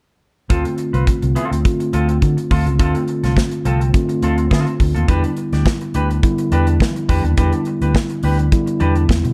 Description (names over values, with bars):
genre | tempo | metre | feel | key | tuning
disco | 105 BPM | 4/4 | straight | D dorian | A4 = 443 Hz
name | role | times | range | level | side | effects
clean electric guitar | accompaniment | 0.5-9.3 s | C4 to D5 | -27 LUFS | equal | none
mellow tine electric piano | accompaniment | 0.5-9.3 s | D3 to F4 | -23 LUFS | equal | none
fingered electric bass | bass | 0.5-9.3 s | C2 to E3 | -20 LUFS | equal | none
modern studio drum kit | drums | 0.5-9.3 s | hi-hat, kick drum, snare drum | -20 LUFS | equal | none
room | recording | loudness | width
little or no reverb | dark, warm production | -17 LUFS | mono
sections
0.5-9.3 A section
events
none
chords
0.5 Dm7; 5.1 Em7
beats
| 0.50 1.08 1.65 2.23 | 2.80 3.37 3.94 4.52 | 5.09 5.66 6.24 6.81 | 7.38 7.95 8.52 9.10